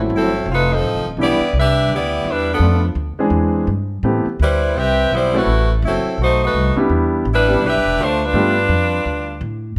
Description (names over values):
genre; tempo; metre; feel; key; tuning
jazz, big band swing; 168 BPM; 4/4; swing 63% on 8ths; unclear; A4 = 440 Hz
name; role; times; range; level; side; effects
warm concert grand piano; accompaniment; 0.0-8.5 s; E3 to A4; -21 LUFS; equal; none
upright bass; bass; 0.0-9.8 s; Eb1 to A2; -22 LUFS; equal; none
edgy saxophone section; melody; 0.2-9.4 s; F3 to E5; -20 LUFS; equal; none
room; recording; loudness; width
moderate large studio reverb, RT60 0.9 s; none; -17 LUFS; mono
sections
0.0-9.8 A section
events
none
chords
0.5 F7; 1.2 Em7; 2.6 Bm7b5; 3.3 E7alt; 4.0 Am9; 5.5 F#m7b5; 6.2 B7b9; 6.9 Em7; 8.3 G7